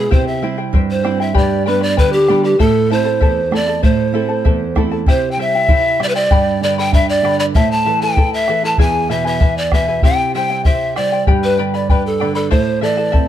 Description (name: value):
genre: andean folk, Andean ensemble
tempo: 97 BPM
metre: 2/4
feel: straight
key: A minor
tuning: A4 = 440 Hz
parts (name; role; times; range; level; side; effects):
- breathy mellow polished pan flute; melody; 0.0-13.3 s; G4 to A5; -16 LUFS; left 1 dB; tape echo
- charango; accompaniment; 0.0-13.3 s; E4 to B5; -22 LUFS; left 5 dB; none
- nylon-string guitar; accompaniment; 0.0-13.3 s; E2 to C5; -20 LUFS; right 6 dB; none
- bombo; percussion; 0.1-13.3 s; none; -14 LUFS; left 1 dB; none
room: moderate studio reverb, RT60 0.6 s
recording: dark, warm production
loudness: -13 LUFS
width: side -11 dB against mid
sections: 0.0-5.1 A section; 5.1-13.3 A section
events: none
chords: 0.1 C; 1.4 G; 2.6 Am; 5.1 C; 6.3 G; 7.5 Am; 8.8 E; 10.0 C; 11.3 G; 12.5 Am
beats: | 0.11 0.73 | 1.35 1.97 | 2.59 3.21 | 3.83 4.45 | 5.07 5.69 | 6.31 6.93 | 7.55 8.17 | 8.79 9.41 | 10.03 10.65 | 11.27 11.89 | 12.51 13.14